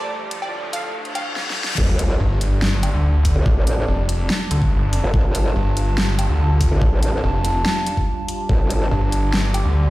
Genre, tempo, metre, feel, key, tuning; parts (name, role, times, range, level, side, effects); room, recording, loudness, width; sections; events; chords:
heavy wobble dubstep; 143 BPM; 4/4; half-time; A4 = 440 Hz
wide unison pluck; melody; 0.0-1.4 s; D5 to F5; -31 LUFS; right 1 dB; dub echo
supersaw pad; sustained chords; 0.0-9.9 s; D2 to D5; -30 LUFS; right 1 dB; sidechain pumping, low-pass filter
riser, reverse cymbal and sub drop; sound effects; 0.0-3.5 s; -27 LUFS; left 1 dB
warbly tape-like pad; texture; 0.0-9.9 s; D4 to D6; -30 LUFS; right 1 dB; chorus, built-in reverb, sidechain pumping
dubstep drum kit; drums; 0.3-9.6 s; crash cymbal, hi-hat, snare drum, woodblock; -25 LUFS; left 1 dB; overdrive
growl bass; bass; 1.8-8.9 s; G1 to Bb1; -19 LUFS; equal; chorus, overdrive
electronic kick drum; drums; 1.8-8.6 s; -18 LUFS; equal; overdrive
snarling distorted saw bass; bass; 2.2-9.9 s; F1 to D2; -18 LUFS; equal; distortion, overdrive
light reverb; played on a big sound system in a bare room, large studio reverb, high-pass filter; -17 LUFS; side -17 dB against mid
0.0-1.8 A section; 1.8-9.9 B section
build-up 0.0-1.8; riser 0.0-1.8; filter sweep 0.0-1.8; reverse cymbal 0.9-1.8; drum fill 1.4-1.8; drop 1.8-9.9; impact 1.8-3.5
0.1 Dm; 1.8 G5